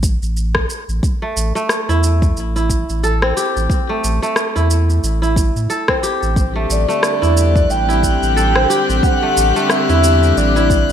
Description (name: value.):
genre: organic downtempo.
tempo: 90 BPM.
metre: 4/4.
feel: swing 57% on 16ths.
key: A dorian.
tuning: A4 = 440 Hz.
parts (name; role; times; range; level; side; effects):
warm sub bass; bass; 0.0-10.9 s; A1 to A2; -16 LUFS; equal; sidechain pumping.
electronic kick drum; drums; 0.0-10.9 s; none; -18 LUFS; equal; studio reverb.
electronic shaker and rim click; drums; 0.0-10.9 s; none; -21 LUFS; equal; studio reverb, gated reverb.
kora; arpeggios; 1.2-10.9 s; A3 to A4; -20 LUFS; right 2 dB; ping-pong delay.
warm chamber string section; sustained chords; 6.4-10.9 s; D3 to G4; -20 LUFS; left 3 dB; sidechain pumping.
drifting glass-harmonics texture; texture; 6.9-10.9 s; F#6; -26 LUFS; left 6 dB; chorus, built-in reverb.
breathy flute-like synth lead; melody; 6.7-10.9 s; D5 to G5; -18 LUFS; equal; wide subtle chorus, ping-pong delay.
room: moderate plate reverb, RT60 2.2 s.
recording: bright 1980s-style digital production.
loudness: -13 LUFS.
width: side -9 dB against mid.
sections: 0.0-10.9 A section.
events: none.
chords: 0.0 Am; 6.4 Csus2/A.